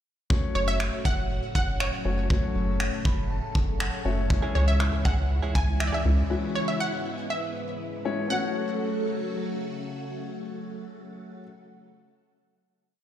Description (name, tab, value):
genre	dance-pop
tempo	120 BPM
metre	4/4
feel	straight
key	F# minor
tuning	A4 = 440 Hz
part	dark concert grand piano	accompaniment	0.3-11.4 s	G#3 to B5	-32 LUFS	left 5 dB	sidechain pumping
part	phased string machine	sustained chords	0.3-11.4 s	G#2 to A4	-34 LUFS	right 1 dB	ensemble chorus, phaser, sidechain pumping
part	loose indie drum kit	drums	0.3-5.9 s	finger snaps, kick drum	-27 LUFS	equal	none
part	wide unison pluck	melody	0.6-11.4 s	C#5 to G#5	-31 LUFS	right 1 dB	digital delay
part	round analog bass	bass	0.6-6.2 s	F#1 to C#2	-26 LUFS	equal	sidechain pumping
part	direct-recorded clean electric guitar	riff	4.3-6.2 s	G#3 to G#4	-38 LUFS	right 6 dB	wide subtle chorus
room	light reverb, studio ambience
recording	played on a big sound system in a bare room, large studio reverb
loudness	-24 LUFS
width	side -11 dB against mid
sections	0.3-8.3 verse; 8.3-12.3 final chord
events	grand piano fill 2.8-4.3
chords	0.3 F#m; 4.3 C#m; 8.3 F#m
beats	| 0.30 0.80 1.30 1.80 | 2.30 2.80 3.30 3.80 | 4.30 4.80 5.30 5.80 | 6.30 6.80 7.30 7.80 | 8.30 8.80 9.30 9.80 | 10.30 10.80 11.30